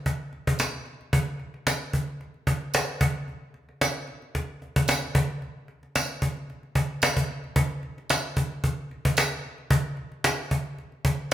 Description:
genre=pop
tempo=112 BPM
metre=4/4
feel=swing 54% on 16ths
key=none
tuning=none
part: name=cajon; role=drums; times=0.1-11.3 s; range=none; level=-24 LUFS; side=equal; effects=none
part: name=tambourine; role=percussion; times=0.6-11.3 s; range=none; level=-33 LUFS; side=right 3 dB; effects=none
room=wet large studio reverb, RT60 1.4 s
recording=band playing live in one room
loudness=-25 LUFS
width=side -12 dB against mid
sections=0.0-1.1 A section; 1.1-11.3 B section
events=none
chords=none

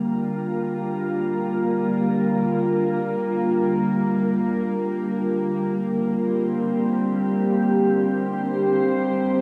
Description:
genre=ambient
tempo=free time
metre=none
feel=none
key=Bb major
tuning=A4 = 440 Hz
part: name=glassy FM pad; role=sustained chords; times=0.0-9.4 s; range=D3 to C5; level=-23 LUFS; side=equal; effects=ensemble chorus, built-in reverb, cassette tape
part: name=bowed-like drone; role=drone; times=0.0-9.4 s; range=Bb3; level=-33 LUFS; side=equal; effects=built-in reverb, cassette tape
room=wet studio ambience, RT60 0.5 s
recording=home recording on cassette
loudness=-23 LUFS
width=mono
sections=0.0-9.4 A section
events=fade-in on synth drone 0.0-9.4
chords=0.0 Bb6; 4.4 Csus2

